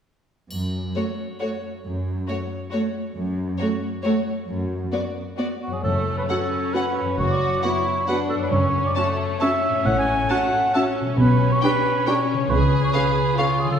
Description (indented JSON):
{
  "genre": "cinematic, playful, whimsical film cue",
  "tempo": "135 BPM",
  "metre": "3/4",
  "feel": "straight",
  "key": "F# minor",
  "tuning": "A4 = 440 Hz",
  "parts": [
    { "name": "rich studio cello section", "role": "bass", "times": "0.5-12.8 s", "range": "F#2 to C#3", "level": "-27 LUFS", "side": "equal", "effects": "none" },
    { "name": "triangle", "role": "percussion", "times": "0.5-1.4 s", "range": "none", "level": "-41 LUFS", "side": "equal", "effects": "none" },
    { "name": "rich studio violin section", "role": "melody", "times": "1.0-13.5 s", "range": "C#5 to A5", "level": "-32 LUFS", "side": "left 3 dB", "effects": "none" },
    { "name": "rich studio violin section", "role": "second line", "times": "1.0-13.8 s", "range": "A3 to G#4", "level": "-29 LUFS", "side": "left 2 dB", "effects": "none" },
    { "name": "warm studio viola section", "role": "accompaniment", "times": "1.0-13.5 s", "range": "A3 to G#4", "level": "-27 LUFS", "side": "right 1 dB", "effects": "none" },
    { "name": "mellow cor anglais", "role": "second line", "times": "5.6-13.8 s", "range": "F#4 to G#5", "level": "-23 LUFS", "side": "right 1 dB", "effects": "none" },
    { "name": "concert harp", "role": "arpeggios", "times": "5.7-13.8 s", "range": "F#2 to C#5", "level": "-26 LUFS", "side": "left 2 dB", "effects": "none" },
    { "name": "dark studio double bass section", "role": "bass", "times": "5.9-12.8 s", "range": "F#1 to C#2", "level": "-26 LUFS", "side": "right 1 dB", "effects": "none" }
  ],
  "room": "wet scoring stage reverb, RT60 1.8 s",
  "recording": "heard from further back in the room",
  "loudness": "-20 LUFS",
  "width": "side -8 dB against mid",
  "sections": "0.5-5.8 A section; 5.8-13.8 B section",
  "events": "none",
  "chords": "0.5 F#m; 4.5 N.C.; 5.8 F#m; 7.2 Bm/F#; 8.5 F#m; 9.9 F#m/A; 11.2 G/B; 12.5 C#7"
}